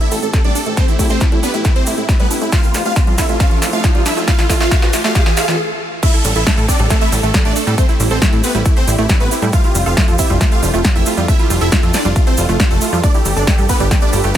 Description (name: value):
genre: uplifting trance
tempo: 137 BPM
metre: 4/4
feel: straight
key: A minor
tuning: A4 = 438 Hz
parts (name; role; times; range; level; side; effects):
- supersaw chords; melody; 0.0-14.4 s; A3 to F5; -19 LUFS; right 1 dB; phaser, sidechain pumping, dub echo
- lush unison pad; sustained chords; 0.0-14.4 s; F3 to B4; -26 LUFS; equal; chorus, sidechain pumping
- wide unison pluck; arpeggios; 0.0-14.4 s; E3 to A4; -23 LUFS; right 4 dB; sidechain pumping, ping-pong delay
- big-room dance drum kit; drums; 0.0-14.4 s; crash cymbal, hi-hat, ride cymbal, snare drum; -21 LUFS; equal; high-pass filter on snare, sidechain pumping on hats, high-pass filter on hats, sidechain pumping on cymbals, high-pass filter on cymbals
- riser and downlifter; sound effects; 1.5-9.5 s; none; -26 LUFS; left 1 dB; none
- plucky analog bass; bass; 0.1-14.3 s; F1 to A2; -19 LUFS; equal; sidechain pumping, high-pass filter
- cabasa; percussion; 0.1-14.4 s; none; -26 LUFS; right 3 dB; none
- electronic kick drum; drums; 0.3-14.4 s; none; -14 LUFS; equal; none
room: digital ambience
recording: none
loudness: -12 LUFS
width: side -11 dB against mid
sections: 0.0-6.0 A section; 6.0-14.4 B section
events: build-up 0.0-6.0; drum fill 0.0-5.6; filter sweep on synth pluck 0.0-6.0; riser 1.5-5.6; stop 5.6-6.0; drop 6.0-14.4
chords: 0.0 Am7; 2.5 Fmaj7; 6.0 Am7; 9.5 Fmaj7; 13.0 G7